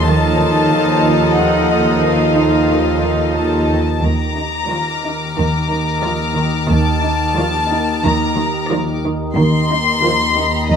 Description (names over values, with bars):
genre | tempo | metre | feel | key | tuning
cinematic, suspense film score | 90 BPM | 4/4 | straight | unclear | A4 = 439 Hz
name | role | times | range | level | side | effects
warm chamber violin section | melody | 0.0-10.8 s | Eb5 to C6 | -20 LUFS | left 4 dB | none
rich chamber violin section | second line | 0.0-10.5 s | A4 to Eb5 | -21 LUFS | left 5 dB | none
warm symphonic viola section | accompaniment | 0.0-10.5 s | F3 to F4 | -18 LUFS | right 3 dB | none
dark chamber cello section | bass | 0.0-10.8 s | Eb2 | -20 LUFS | right 1 dB | none
organ-like drone | drone | 0.0-10.8 s | Eb2 | -21 LUFS | equal | ensemble chorus, built-in reverb
warm chamber violin section | texture | 0.0-10.8 s | Db5 to F6 | -28 LUFS | left 3 dB | none
rich symphonic cello section | riff | 0.1-10.8 s | Eb3 to Eb4 | -23 LUFS | right 2 dB | none
dark chamber double bass section | bass | 4.0-9.9 s | Eb2 | -19 LUFS | right 2 dB | none
room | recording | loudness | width
moderate scoring stage reverb, RT60 1.9 s | close, detailed microphones | -13 LUFS | side -7 dB against mid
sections
0.0-10.8 A section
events
none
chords
0.0 F7/Eb